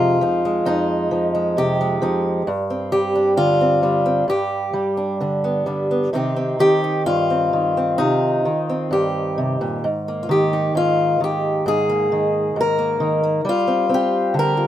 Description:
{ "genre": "folk, solo fingerstyle acoustic guitar", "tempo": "66 BPM", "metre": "4/4", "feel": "rubato", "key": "C minor", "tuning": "A4 = 439 Hz", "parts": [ { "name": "fingerpicked acoustic archtop guitar", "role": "solo", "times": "0.0-14.7 s", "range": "F2 to Bb4", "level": "-17 LUFS", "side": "equal", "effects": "none" } ], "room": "light reverb", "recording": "minimal, uncompressed stereo recording", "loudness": "-17 LUFS", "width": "side -11 dB against mid", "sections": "0.0-14.7 A section", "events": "none", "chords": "0.0 Fm7; 2.5 Gsus4; 4.3 G; 6.1 Cm; 9.8 Absus2; 13.5 G7sus4" }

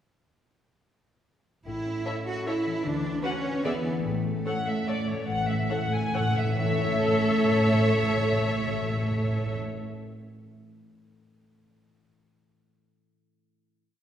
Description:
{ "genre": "classical, orchestral ballroom waltz", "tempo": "134-164 BPM", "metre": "3/4", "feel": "rubato", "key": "A major", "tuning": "A4 = 440 Hz", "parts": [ { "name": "concert harp", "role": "arpeggios", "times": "1.7-10.5 s", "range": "A2 to E5", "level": "-33 LUFS", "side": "left 5 dB", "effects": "none" }, { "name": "rich symphonic cello section", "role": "bass", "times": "1.7-9.6 s", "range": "A3 to F#4", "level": "-30 LUFS", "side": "right 2 dB", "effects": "none" }, { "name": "warm studio double bass section", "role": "bass", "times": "1.7-9.6 s", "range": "A1 to E2", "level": "-35 LUFS", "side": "right 2 dB", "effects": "none" }, { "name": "rich symphonic violin section", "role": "melody", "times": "2.1-9.6 s", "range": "C#5 to G#5", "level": "-32 LUFS", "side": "left 2 dB", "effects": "none" }, { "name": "rich studio violin section", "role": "second line", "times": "2.1-9.6 s", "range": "B4 to D5", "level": "-34 LUFS", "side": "left 1 dB", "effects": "none" }, { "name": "rich symphonic viola section", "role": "accompaniment", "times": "2.1-9.6 s", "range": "F#4 to A4", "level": "-32 LUFS", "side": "right 1 dB", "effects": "none" }, { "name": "timpani", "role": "percussion", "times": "4.0-9.6 s", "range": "A2", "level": "-32 LUFS", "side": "equal", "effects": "none" } ], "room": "wet scoring stage reverb, RT60 1.8 s", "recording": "heard from further back in the room", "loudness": "-24 LUFS", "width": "side -10 dB against mid", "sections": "1.7-6.6 A section; 6.6-9.1 final chord", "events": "slowing down 3.4-6.6; timpani fill 4.0-6.6", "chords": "1.7 A; 2.8 Bm/D; 3.6 E7; 4.0 A" }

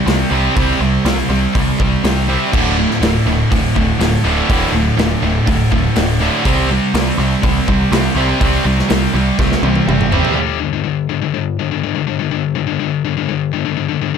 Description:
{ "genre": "heavy metal", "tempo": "123 BPM", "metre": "4/4", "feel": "straight", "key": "unclear", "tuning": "A4 = 440 Hz", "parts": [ { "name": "heavy high-gain guitar", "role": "riff", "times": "0.0-10.4 s", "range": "D2 to C4", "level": "-18 LUFS", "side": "right 11 dB", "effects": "distortion" }, { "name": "scooped high-gain guitar", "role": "riff", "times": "0.0-14.2 s", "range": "D2 to C4", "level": "-18 LUFS", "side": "left 10 dB", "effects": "distortion" }, { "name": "scooped high-gain guitar", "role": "riff", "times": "0.0-10.4 s", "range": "D2 to C4", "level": "-21 LUFS", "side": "equal", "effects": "distortion" }, { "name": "growling picked electric bass", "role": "bass", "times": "0.1-10.2 s", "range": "D1 to C2", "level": "-19 LUFS", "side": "equal", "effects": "overdrive" }, { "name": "big rock drum kit", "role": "drums", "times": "0.1-10.4 s", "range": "crash cymbal, hi-hat, kick drum, snare drum, toms", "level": "-19 LUFS", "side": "equal", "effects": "none" } ], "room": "little or no reverb", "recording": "dark, warm production", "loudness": "-13 LUFS", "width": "side -7 dB against mid", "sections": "0.0-10.4 A section; 10.4-14.2 B section", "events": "drum fill 9.4-10.4; half time 10.4-14.2", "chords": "0.0 C5; 2.5 D5; 6.5 C5; 10.4 G5" }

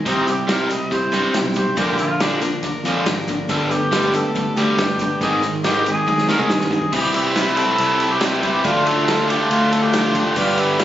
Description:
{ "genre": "folk rock and heartland rock", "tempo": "140 BPM", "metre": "4/4", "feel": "straight", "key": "C major", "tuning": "A4 = 440 Hz", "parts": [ { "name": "bright reed electric piano", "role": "accompaniment", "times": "0.0-10.8 s", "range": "B3 to D5", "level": "-31 LUFS", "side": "right 2 dB", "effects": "none" }, { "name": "picked plugged-in twelve-string acoustic guitar", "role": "accompaniment", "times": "0.0-10.8 s", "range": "G2 to Bb4", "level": "-25 LUFS", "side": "left 3 dB", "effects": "none" }, { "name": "overdriven electric guitar", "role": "riff", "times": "0.0-10.8 s", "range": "G2 to G4", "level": "-20 LUFS", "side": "equal", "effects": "none" }, { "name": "warm cor anglais", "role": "melody", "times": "0.1-10.8 s", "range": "D4 to Eb5", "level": "-22 LUFS", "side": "equal", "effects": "none" }, { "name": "fingered electric bass", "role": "bass", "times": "0.1-10.8 s", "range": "G1 to G2", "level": "-25 LUFS", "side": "equal", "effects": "none" }, { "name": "natural country drum kit", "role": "drums", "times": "0.1-10.8 s", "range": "crash cymbal, hi-hat, kick drum, ride cymbal, snare drum, toms", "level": "-24 LUFS", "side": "equal", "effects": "none" }, { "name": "tube shaker", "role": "percussion", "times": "0.1-10.8 s", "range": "none", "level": "-41 LUFS", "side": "right 3 dB", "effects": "none" } ], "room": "light reverb", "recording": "recorded on a phone in the room, studio reverb, compression, nothing above 7.7 kHz", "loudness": "-16 LUFS", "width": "side -12 dB against mid", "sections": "0.0-6.9 A section; 6.9-10.8 B section", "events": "cor anglais solo 0.0-6.9; drum fill 6.1-6.9", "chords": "0.1 C; 1.8 Bb; 3.5 Gadd9; 5.2 Abadd9; 6.9 C; 8.6 Dm" }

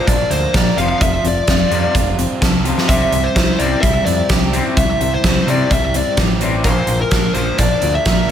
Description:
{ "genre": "indie rock", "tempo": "128 BPM", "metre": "4/4", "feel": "straight", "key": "C mixolydian", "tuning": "A4 = 440 Hz", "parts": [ { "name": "fuzz lead guitar", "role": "melody", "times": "0.0-8.3 s", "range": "Bb4 to F5", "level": "-19 LUFS", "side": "left 1 dB", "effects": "distortion, slapback echo" }, { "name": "overdriven electric guitar", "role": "riff", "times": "0.0-8.3 s", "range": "Bb2 to Bb4", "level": "-24 LUFS", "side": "right 4 dB", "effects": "wide subtle chorus, slapback echo" }, { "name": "raw garage guitar", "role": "riff", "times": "0.0-8.3 s", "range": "F2 to C4", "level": "-23 LUFS", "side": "left 5 dB", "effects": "overdrive, slapback echo" }, { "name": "growling picked electric bass", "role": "bass", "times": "0.1-8.3 s", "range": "F1 to C3", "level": "-21 LUFS", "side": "equal", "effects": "overdrive" }, { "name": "big rock drum kit", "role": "drums", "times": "0.1-8.2 s", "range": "hi-hat, kick drum, snare drum", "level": "-17 LUFS", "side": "equal", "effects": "none" } ], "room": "moderate concert hall reverb, RT60 1.9 s, small room ambience", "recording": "big arena sound", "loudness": "-13 LUFS", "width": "side -9 dB against mid", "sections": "0.0-8.3 A section", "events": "none", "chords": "0.0 Bb; 0.8 Fadd9; 2.9 C; 6.6 Bb" }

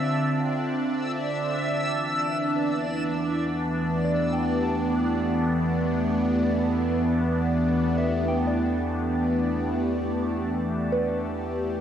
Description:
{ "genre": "ambient", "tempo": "61 BPM", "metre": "3/4", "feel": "straight", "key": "unclear", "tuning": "A4 = 439 Hz", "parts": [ { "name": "evolving wavetable pad", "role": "sustained chords", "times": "0.0-11.8 s", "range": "D3 to D5", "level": "-24 LUFS", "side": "equal", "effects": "phaser, built-in reverb, cassette tape" }, { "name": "soft synth bell", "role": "arpeggios", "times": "0.0-11.8 s", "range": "B4 to A5", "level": "-35 LUFS", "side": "equal", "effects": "chorus, phaser, cassette tape, analog delay" }, { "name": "backwards swelling texture", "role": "texture", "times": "0.0-1.6 s", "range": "E5 to E6", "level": "-31 LUFS", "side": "right 1 dB", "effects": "built-in reverb, cassette tape" }, { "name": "round analog bass", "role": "bass", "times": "1.6-11.8 s", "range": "E2", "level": "-33 LUFS", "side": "left 1 dB", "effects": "none" }, { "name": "organ-like drone", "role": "drone", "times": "4.0-11.8 s", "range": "A3", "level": "-33 LUFS", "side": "equal", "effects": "ensemble chorus, built-in reverb, phaser, cassette tape" } ], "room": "wet spring reverb, RT60 1.7 s", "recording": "home recording on cassette", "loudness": "-23 LUFS", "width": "side -9 dB against mid", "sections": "0.0-1.6 A section; 1.6-11.8 B section", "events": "none", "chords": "0.0 Dm9; 1.6 Em7" }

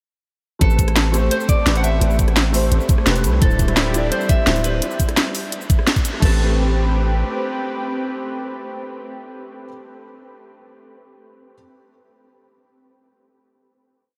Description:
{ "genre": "liquid drum and bass", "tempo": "171 BPM", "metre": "4/4", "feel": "straight", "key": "A minor", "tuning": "A4 = 440 Hz", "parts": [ { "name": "semi-hollow electric guitar", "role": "melody", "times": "0.6-9.7 s", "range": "A4 to F#5", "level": "-30 LUFS", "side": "equal", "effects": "analog delay" }, { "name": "felt-muted upright piano", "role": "accompaniment", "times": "0.6-11.6 s", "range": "G3 to D5", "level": "-28 LUFS", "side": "equal", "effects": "ensemble chorus, tape echo" }, { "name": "long sustained 808-style bass", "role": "bass", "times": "0.6-7.2 s", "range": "D1 to C2", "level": "-21 LUFS", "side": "equal", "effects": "none" }, { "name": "drum and bass drum kit", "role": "drums", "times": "0.6-6.3 s", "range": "cabasa, crash cymbal, hi-hat, rim click, snare drum", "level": "-25 LUFS", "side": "equal", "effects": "overdrive" }, { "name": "electronic kick drum", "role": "drums", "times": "0.6-6.3 s", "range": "none", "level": "-19 LUFS", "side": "equal", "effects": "overdrive" }, { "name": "lush unison pad", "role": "sustained chords", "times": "3.4-9.7 s", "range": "G3 to B4", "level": "-30 LUFS", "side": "equal", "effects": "chorus, sidechain pumping" } ], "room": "moderate huge ambient reverb, RT60 7.8 s", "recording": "dreamy mix soaked in reverb", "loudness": "-18 LUFS", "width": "mono", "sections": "0.6-6.2 drop; 6.2-9.0 final chord", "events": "drop 0.6-6.2; band accent 5.9", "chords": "0.6 Am9; 3.4 D9sus4; 4.8 N.C.; 6.2 Am9" }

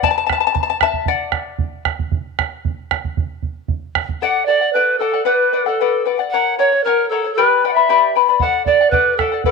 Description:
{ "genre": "andean folk, Andean ensemble", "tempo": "115 BPM", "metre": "2/4", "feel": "straight", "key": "unclear", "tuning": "A4 = 440 Hz", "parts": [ { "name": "charango", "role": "accompaniment", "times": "0.0-1.8, 4.2-9.5 s", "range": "G4 to B5", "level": "-17 LUFS", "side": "left 12 dB", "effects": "none" }, { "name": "bombo", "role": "percussion", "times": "0.0-4.2, 8.4-9.5 s", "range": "none", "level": "-21 LUFS", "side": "right 7 dB", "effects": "none" }, { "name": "bright reedy polished pan flute", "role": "melody", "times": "4.2-9.5 s", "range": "A4 to F#5", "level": "-15 LUFS", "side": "right 2 dB", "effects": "none" } ], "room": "moderate echo chamber reverb, RT60 1.3 s, small room ambience", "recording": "1960s-style stereo with parts hard left and right", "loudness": "-15 LUFS", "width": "side -4 dB against mid", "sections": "0.0-4.2 A section; 4.2-9.5 B section", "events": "charango solo 0.0-4.2", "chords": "0.0 N.C.; 4.2 D; 5.3 Bm; 6.3 F#; 7.4 G; 8.4 D" }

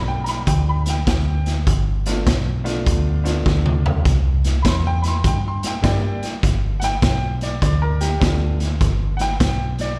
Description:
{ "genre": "electric blues shuffle", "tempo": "101 BPM", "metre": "4/4", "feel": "swing 65% on 8ths", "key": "G mixolydian", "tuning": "A4 = 445 Hz", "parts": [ { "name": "bright grand piano", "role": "accompaniment", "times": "0.0-10.0 s", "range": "G3 to C6", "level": "-28 LUFS", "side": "equal", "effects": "slapback echo" }, { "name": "vintage muted fingered electric bass", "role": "bass", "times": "0.0-10.0 s", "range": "G1 to G2", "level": "-23 LUFS", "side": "equal", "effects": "none" }, { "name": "raw garage drum kit", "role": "drums", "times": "0.3-9.9 s", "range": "hi-hat, kick drum, snare drum, toms", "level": "-23 LUFS", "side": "equal", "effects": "none" } ], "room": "little or no reverb", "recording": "live gig heard through the venue's PA, recital hall reverb", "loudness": "-20 LUFS", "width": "mono", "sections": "0.0-10.0 A section", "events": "drum fill 3.5-4.1", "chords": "0.0 G7; 4.1 C7; 6.4 G" }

